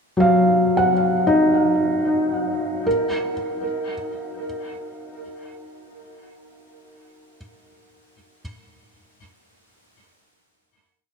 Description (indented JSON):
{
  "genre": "ambient",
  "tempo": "79 BPM",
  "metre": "4/4",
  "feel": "straight",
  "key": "unclear",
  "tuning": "A4 = 439 Hz",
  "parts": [
    { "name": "felt-muted upright piano", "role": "solo", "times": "0.2-8.4 s", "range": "Gb3 to Gb5", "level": "-19 LUFS", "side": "equal", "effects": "diffuse ambient delay" }
  ],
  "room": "wet plate reverb, RT60 2.6 s",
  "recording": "dreamy mix soaked in reverb, cassette tape",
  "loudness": "-18 LUFS",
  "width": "side -5 dB against mid",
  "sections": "0.0-2.9 A section; 2.9-5.9 final note",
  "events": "none",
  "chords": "0.0 Ebmadd9/Gb; 2.9 Eb5",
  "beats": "0.56 1.31 2.08 | 2.86 3.62 4.38 5.14"
}